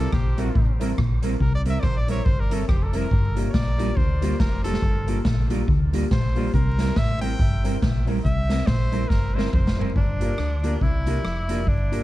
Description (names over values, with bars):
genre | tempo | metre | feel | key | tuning
ska | 140 BPM | 4/4 | swing 59% on 8ths | G dorian | A4 = 440 Hz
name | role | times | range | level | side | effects
bright trumpet | melody | 0.0-9.9 s | G4 to G5 | -32 LUFS | equal | dub echo
mellow electric guitar | accompaniment | 0.0-12.0 s | G3 to Bb4 | -31 LUFS | right 4 dB | dub echo
dark upright piano | stabs | 0.0-12.0 s | Bb3 to Bb4 | -33 LUFS | left 4 dB | dub echo
deep dub fingered electric bass | bass | 0.0-12.0 s | F1 to D2 | -25 LUFS | equal | none
mellow electric guitar | riff | 0.1-11.8 s | F2 to D3 | -27 LUFS | left 3 dB | none
street-band drum kit | drums | 0.1-12.0 s | hi-hat, kick drum, rim click, snare drum, toms | -24 LUFS | equal | none
breathy tenor saxophone | melody | 10.0-12.0 s | D4 to E4 | -30 LUFS | equal | dub echo
room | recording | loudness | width
little or no reverb | dark, warm production, vinyl crackle | -20 LUFS | side -16 dB against mid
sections
0.0-10.0 A section; 10.0-12.0 B section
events
trumpet solo 0.0-10.0; drum fill 9.1-10.0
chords
0.0 C7; 3.1 Gm7; 6.5 C7; 10.0 Gm7